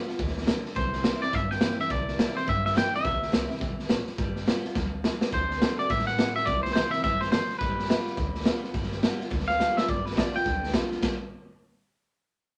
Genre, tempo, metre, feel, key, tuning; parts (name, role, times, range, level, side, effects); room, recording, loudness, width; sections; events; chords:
rockabilly; 210 BPM; 4/4; swing 61% on 8ths; G mixolydian; A4 = 440 Hz
picked steel-string acoustic guitar; accompaniment; 0.0-11.2 s; G2 to F#4; -38 LUFS; equal
upright bass; bass; 0.1-11.2 s; G1 to G2; -39 LUFS; equal
raw garage drum kit; drums; 0.1-11.1 s; hi-hat, kick drum, ride cymbal, snare drum; -30 LUFS; equal
twangy electric guitar; melody; 0.8-10.7 s; B4 to G5; -30 LUFS; equal
moderate club reverb, RT60 0.7 s; -27 LUFS; mono
0.0-9.9 A section; 9.9-11.0 B section; 11.0-12.2 C section
drum fill 4.8-5.3, 9.6
0.0 G7 (rootless); 0.8 C7; 4.2 G7; 5.3 D7; 6.5 C7; 7.6 G7